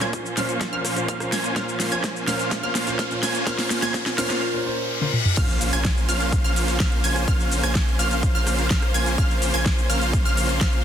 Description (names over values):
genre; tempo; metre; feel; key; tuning
EDM, festival progressive house; 126 BPM; 4/4; straight; Bb minor; A4 = 442 Hz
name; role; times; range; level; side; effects
clear concert grand piano; accompaniment; 0.0-5.1 s; Bb2 to C5; -29 LUFS; equal; sidechain pumping, tape echo
bright studio string section; sustained chords; 0.0-10.8 s; Bb2 to C5; -33 LUFS; left 1 dB; sidechain pumping, low-pass filter
wide unison pluck; arpeggios; 0.0-10.8 s; F6 to Ab6; -29 LUFS; right 1 dB; sidechain pumping, tape echo
supersaw chords; riff; 0.0-10.8 s; Bb3 to Ab5; -26 LUFS; right 1 dB; sidechain pumping, low-pass filter, tape echo
big-room dance drum kit; drums; 0.0-10.8 s; crash cymbal, hi-hat, rim click, shaker, snare drum, toms; -27 LUFS; equal; overdrive
riser, reverse cymbal and impact; sound effects; 2.2-7.3 s; none; -31 LUFS; left 2 dB; none
electronic kick drum; drums; 0.1-10.7 s; none; -23 LUFS; equal; overdrive, high-pass filter on kick
saturated sub bass; bass; 5.4-10.8 s; Bb1; -26 LUFS; equal; sidechain pumping
room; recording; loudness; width
light reverb, digital ambience; dense, heavily limited modern master; -20 LUFS; side -9 dB against mid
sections
0.0-5.4 A section; 5.4-10.8 B section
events
build-up 0.0-5.4; drum fill 0.0-4.4, 5.0-5.4; filter sweep on supersaw synth 0.0-5.4; filter sweep on string section 0.0-5.4; riser 2.2-5.4; reverse cymbal 4.4-5.4; drop 5.4-10.8; impact 5.4-7.3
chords
0.0 Bbmadd9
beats
0.13 0.61 1.09 | 1.56 2.04 2.52 2.99 | 3.47 3.94 4.42 4.90 | 5.37 5.85 6.32 6.80 | 7.28 7.75 8.23 8.71 | 9.18 9.66 10.13 10.61